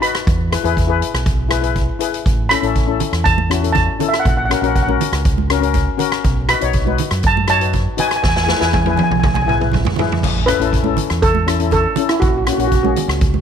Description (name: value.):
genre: calypso.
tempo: 120 BPM.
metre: 4/4.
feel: straight.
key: A major.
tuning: A4 = 445 Hz.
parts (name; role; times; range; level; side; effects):
steel pan; melody; 0.0-12.9 s; E4 to B5; -19 LUFS; right 2 dB; none.
steel pan; accompaniment; 0.0-13.2 s; A#3 to C#5; -21 LUFS; left 12 dB; none.
street-band drum kit; drums; 0.0-13.3 s; crash cymbal, hi-hat, kick drum, rim click, snare drum, toms; -18 LUFS; right 1 dB; none.
deep dub fingered electric bass; bass; 0.3-13.4 s; A1 to F#2; -20 LUFS; right 1 dB; none.
congas; percussion; 3.0-13.4 s; none; -25 LUFS; right 13 dB; none.
room: small room reverb.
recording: 1960s-style stereo with parts hard left and right.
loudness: -14 LUFS.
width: side -8 dB against mid.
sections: 0.0-10.2 A section; 10.2-13.4 A section.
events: drum fill 8.2-10.2.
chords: 0.3 E; 2.3 Aadd9; 4.3 F#/A#; 6.2 B7; 8.2 E; 10.2 Aadd9; 12.2 F#/A#.